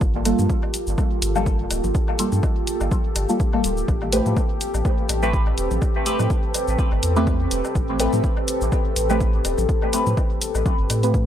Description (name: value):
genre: dub techno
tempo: 124 BPM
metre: 4/4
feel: swing 55% on 16ths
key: unclear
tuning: A4 = 441 Hz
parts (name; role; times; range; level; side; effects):
- deep dark ambient pad; sustained chords; 0.0-11.3 s; Bb3 to B4; -26 LUFS; equal; chorus, built-in reverb, sidechain pumping
- warm sub bass; bass; 0.0-11.3 s; D1 to A2; -23 LUFS; equal; tube saturation, sidechain pumping
- electronic kick drum; drums; 0.0-11.2 s; none; -22 LUFS; equal; none
- electronic shaker and hi-hat; drums; 0.0-11.2 s; none; -28 LUFS; left 1 dB; none
- deep mellow chord stab; stabs; 0.3-11.2 s; G3 to B4; -25 LUFS; equal; chorus, phaser, sidechain pumping, dub echo
- woodblock and congas; percussion; 0.3-11.0 s; none; -34 LUFS; left 4 dB; overdrive, sidechain pumping on perc, dub echo
room: digital ambience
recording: dry, gritty hardware recording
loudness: -19 LUFS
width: side -10 dB against mid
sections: 0.0-11.3 A section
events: none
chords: 0.0 Gm9; 3.9 Am9